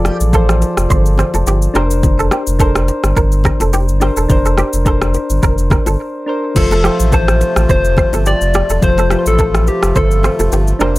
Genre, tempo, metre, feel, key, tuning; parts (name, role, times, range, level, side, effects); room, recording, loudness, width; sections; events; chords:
afrobeats; 106 BPM; 4/4; swing 55% on 16ths; F major; A4 = 441 Hz
soft electric-piano-like synth keys; accompaniment; 0.0-11.0 s; F3 to D5; -19 LUFS; left 1 dB; chorus
direct-recorded clean electric guitar; riff; 0.0-10.9 s; G4 to C5; -20 LUFS; right 4 dB; ensemble chorus
sub bass with octave; bass; 0.0-11.0 s; E1 to A1; -15 LUFS; equal
afro-pop drum kit; drums; 0.1-11.0 s; crash cymbal, kick drum, rim click, shaker; -16 LUFS; equal
bongos and congas; percussion; 0.1-11.0 s; -24 LUFS; left 3 dB
soft struck synth lead; melody; 6.6-10.5 s; G4 to D5; -17 LUFS; left 2 dB; chorus
accordion; sustained chords; 6.6-11.0 s; C3 to F4; -25 LUFS; left 2 dB
little or no reverb; -11 LUFS; side -18 dB against mid
0.0-6.6 A section; 6.6-11.0 B section
break 6.0-6.6
0.0 F; 1.7 Bbadd9/F; 6.6 F